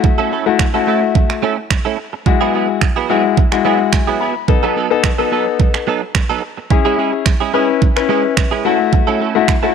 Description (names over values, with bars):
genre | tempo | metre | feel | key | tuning
dance-pop | 108 BPM | 4/4 | straight | E major | A4 = 435 Hz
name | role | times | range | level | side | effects
clear concert grand piano | accompaniment | 0.0-9.7 s | G#3 to B5 | -16 LUFS | left 10 dB | sidechain pumping
direct-recorded clean electric guitar | riff | 0.0-9.7 s | F#3 to A4 | -19 LUFS | right 11 dB | ensemble chorus
pop drum kit | drums | 0.0-9.6 s | finger snaps, kick drum | -15 LUFS | right 3 dB | overdrive
room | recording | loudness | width
light reverb | 1960s-style stereo with parts hard left and right | -13 LUFS | side -7 dB against mid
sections
0.0-9.7 A section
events
grand piano fill 3.4-4.5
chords
0.0 F#m7; 2.3 Eadd9; 4.5 B7; 6.7 C#m; 8.7 F#m7